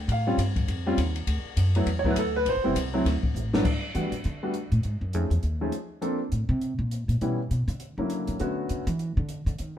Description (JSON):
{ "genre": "jazz piano trio", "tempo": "202 BPM", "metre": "4/4", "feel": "swing 60% on 8ths", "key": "D major", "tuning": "A4 = 440 Hz", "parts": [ { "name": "clear grand piano", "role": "melody", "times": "0.0-8.8 s", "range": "G2 to E#5", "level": "-27 LUFS", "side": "equal", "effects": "none" }, { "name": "upright bass", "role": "bass", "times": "0.0-9.8 s", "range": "E1 to E3", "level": "-27 LUFS", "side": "equal", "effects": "none" }, { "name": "compact cocktail drum kit", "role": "drums", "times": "0.1-9.7 s", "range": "crash cymbal, hi-hat, kick drum, ride cymbal, snare drum", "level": "-32 LUFS", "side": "left 2 dB", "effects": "none" } ], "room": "moderate stone room reverb, RT60 0.9 s", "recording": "band playing live in one room", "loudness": "-24 LUFS", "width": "side -10 dB against mid", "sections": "0.0-3.6 A section; 3.6-9.8 A section", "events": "grand piano solo 0.0-3.6; drum fill 3.3; upright bass solo 3.6-9.8", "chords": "0.1 A7(#5, no3); 1.3 D69; 2.5 Am7; 3.1 D5; 3.6 Gmaj9; 4.8 F7alt; 6.0 Bbmaj7sus2; 7.2 C#m7b5; 7.8 F#7b13; 8.4 Bm7" }